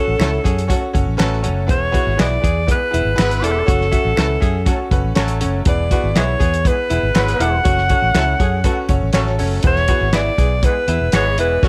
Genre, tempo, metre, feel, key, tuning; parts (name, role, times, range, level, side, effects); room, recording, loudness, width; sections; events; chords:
uptempo 1960s-style soul; 121 BPM; 4/4; straight; E mixolydian; A4 = 439 Hz
bright alto saxophone; melody; 0.0-11.7 s; A4 to F#5; -22 LUFS; equal; slapback echo
bright concert grand piano; accompaniment; 0.0-11.7 s; E3 to E5; -27 LUFS; equal
archtop guitar, miked and amplified; riff; 0.0-11.7 s; C#4 to G#4; -29 LUFS; equal
vintage muted fingered electric bass; bass; 0.1-11.7 s; E1 to F#2; -22 LUFS; equal
warm horn section; second line; 0.2-11.6 s; E3 to B4; -28 LUFS; equal
warm soul drum kit; drums; 0.2-11.7 s; hi-hat, kick drum, snare drum; -21 LUFS; equal
finger snaps; percussion; 0.2-11.2 s; -31 LUFS; equal
light reverb, studio ambience; dark, warm production; -17 LUFS; mono
0.0-11.7 A section
0.0 F#m; 1.7 E; 3.7 F#m; 5.7 E; 7.7 F#m; 9.6 E